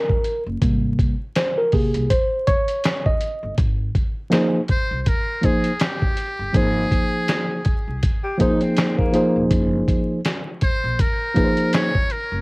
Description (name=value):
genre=hip hop, jazz-hop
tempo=81 BPM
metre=4/4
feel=swing 58% on 16ths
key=Ab major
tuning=A4 = 440 Hz
part: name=mellow tine electric piano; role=accompaniment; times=0.0-11.9 s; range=C3 to Eb5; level=-20 LUFS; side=equal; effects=medium stereo tremolo, cassette tape
part: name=dusty soul sampler-style drum kit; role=drums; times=0.1-12.3 s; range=hi-hat, kick drum, snare drum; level=-21 LUFS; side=equal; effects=cassette tape
part: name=upright bass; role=bass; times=0.5-12.4 s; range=Eb1 to C2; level=-26 LUFS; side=equal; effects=none
part: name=trumpet with metal mute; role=melody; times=4.7-12.4 s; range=G4 to Db5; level=-25 LUFS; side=equal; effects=cassette tape, tape echo
part: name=breathy tenor saxophone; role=second line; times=8.2-9.5 s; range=Bb3 to G4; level=-26 LUFS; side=left 2 dB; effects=cassette tape
room=light reverb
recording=home recording on cassette, vinyl crackle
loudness=-18 LUFS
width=side -27 dB against mid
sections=0.0-3.6 A section; 3.6-12.4 B section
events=tine electric piano solo 0.0-3.6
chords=0.0 Gb; 0.6 Abmaj9; 3.6 Abadd9; 9.5 Gbmaj9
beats=| 0.62 1.36 2.10 2.84 | 3.58 4.32 5.06 5.80 | 6.54 7.29 8.03 8.77 | 9.51 10.25 10.99 11.73